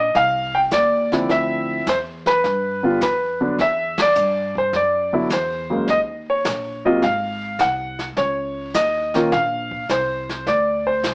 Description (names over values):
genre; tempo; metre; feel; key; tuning
jazz piano trio; 105 BPM; 4/4; swing 69% on 8ths; unclear; A4 = 439 Hz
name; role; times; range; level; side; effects
warm grand piano; melody; 0.0-11.1 s; C3 to G5; -18 LUFS; equal; none
upright bass; bass; 0.0-11.1 s; Ab1 to G2; -31 LUFS; equal; none
jazz brush drum kit; drums; 0.1-11.1 s; brushed snare drum, hi-hat, kick drum, ride cymbal, snare drum; -27 LUFS; equal; none
room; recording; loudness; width
moderate studio reverb, RT60 0.7 s; small speaker sound; -17 LUFS; side -36 dB against mid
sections
0.0-11.1 A section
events
band accent 3.9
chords
0.0 Ebsus2; 1.3 Dm9; 2.4 G7; 3.6 Cadd9(#11); 5.9 Eb7(no3); 7.0 Ab6; 8.2 Db69; 10.5 D5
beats
0.15 0.72 | 1.29 1.87 2.44 3.01 | 3.58 4.16 4.73 5.30 | 5.88 6.45 7.02 7.59 | 8.17 8.74 9.31 9.89 | 10.46 11.03